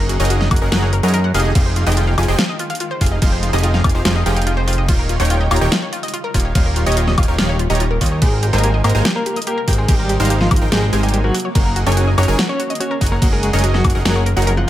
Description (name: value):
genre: future bass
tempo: 144 BPM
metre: 4/4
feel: half-time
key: unclear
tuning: A4 = 440 Hz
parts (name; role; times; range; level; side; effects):
- shimmering ambient pad; sustained chords; 0.0-14.7 s; C3 to Bb4; -31 LUFS; equal; none
- wide unison pluck; arpeggios; 0.0-14.6 s; F4 to Gb5; -25 LUFS; left 2 dB; sidechain pumping, digital delay
- supersaw stab; riff; 0.0-14.5 s; Eb3 to Bb5; -22 LUFS; right 1 dB; sidechain pumping
- fat analog bass; bass; 0.0-14.7 s; Eb1 to Gb2; -17 LUFS; equal; sidechain pumping
- dubstep drum kit; drums; 0.1-14.6 s; crash cymbal, hi-hat, snare drum, woodblock; -22 LUFS; equal; none
- electronic kick drum; drums; 0.5-13.9 s; none; -16 LUFS; equal; none
- semi-hollow electric guitar; melody; 8.2-14.7 s; F3 to Db5; -22 LUFS; equal; tremolo, sidechain pumping, digital delay
room: little or no reverb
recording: none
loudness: -14 LUFS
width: side -13 dB against mid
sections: 0.0-14.7 A section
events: none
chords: 0.0 Gb69; 1.3 Fm7; 4.9 Eb9; 8.2 Abmaj9; 11.3 Gb69